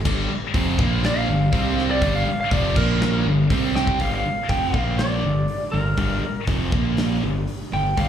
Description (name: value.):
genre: hard rock.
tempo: 121 BPM.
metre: 4/4.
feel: straight.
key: G minor.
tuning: A4 = 440 Hz.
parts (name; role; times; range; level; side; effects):
growling fingered electric bass; bass; 0.0-8.1 s; F1 to C2; -24 LUFS; left 1 dB; overdrive.
scooped high-gain guitar; riff; 0.1-8.1 s; F2 to C4; -28 LUFS; left 11 dB; distortion, slapback echo.
scooped high-gain guitar; riff; 0.1-4.0 s; F2 to C4; -29 LUFS; left 1 dB; distortion.
sludgy distorted guitar; riff; 0.1-8.1 s; F2 to C4; -25 LUFS; right 7 dB; overdrive.
huge arena drum kit; drums; 0.1-8.1 s; crash cymbal, hi-hat, kick drum, snare drum; -26 LUFS; left 1 dB; none.
lightly driven lead guitar; melody; 1.1-8.1 s; Bb4 to G5; -25 LUFS; equal; slapback echo.
room: light reverb, small room ambience.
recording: live gig heard through the venue's PA, club reverb.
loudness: -19 LUFS.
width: side -9 dB against mid.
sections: 0.0-4.0 A section; 4.0-8.1 B section.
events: lead electric guitar solo 0.0-4.0; drum fill 3.8.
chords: 0.0 G5; 0.8 Bb5; 1.3 G5; 1.5 C5; 2.0 G5; 2.8 Bb5; 3.3 G5; 3.5 C5; 4.0 G5; 4.7 Bb5; 5.2 Gm; 6.7 Bb5; 7.2 G5.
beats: | 0.06 0.55 1.04 1.53 | 2.02 2.52 3.01 3.50 | 4.00 4.49 4.99 5.49 | 5.98 6.48 6.98 7.47 | 7.97.